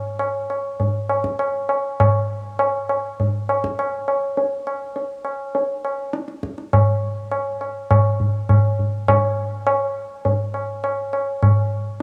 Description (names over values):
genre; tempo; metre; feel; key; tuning
indian classical; 102 BPM; 4/4; straight; none; none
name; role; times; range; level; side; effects
tabla; percussion; 0.2-11.6 s; none; -21 LUFS; equal; none
room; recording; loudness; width
light reverb, studio reverb; home recording on cassette, small room ambience; -21 LUFS; mono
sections
0.0-12.0 A section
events
none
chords
none